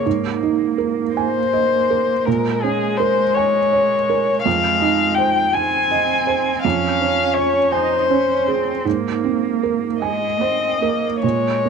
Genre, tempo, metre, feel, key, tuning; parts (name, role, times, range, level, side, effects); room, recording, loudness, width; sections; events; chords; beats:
neoclassical piano and strings; 48-55 BPM (dotted quarters); 6/8; rubato; A4 = 441 Hz
muted violin; melody; 0.0-11.7 s; Ab4 to Ab5; -18 LUFS; left 5 dB
muted cello; second line; 0.0-11.7 s; Ab3 to Eb4; -23 LUFS; right 8 dB
felt-muted upright piano; accompaniment; 0.0-11.7 s; F2 to Ab5; -21 LUFS; right 8 dB
moderate plate reverb, RT60 3.1 s; 1960s-style stereo; -16 LUFS; side -6 dB against mid
0.0-11.7 A section
0.1 Abadd9; 2.3 Bbm7; 4.5 Fm7; 6.6 Dbmaj7/F; 8.9 Abadd9
| 0.06 1.15 | 2.26 3.36 | 4.46 5.55 | 6.64 7.73 | 8.86 10.01 | 11.23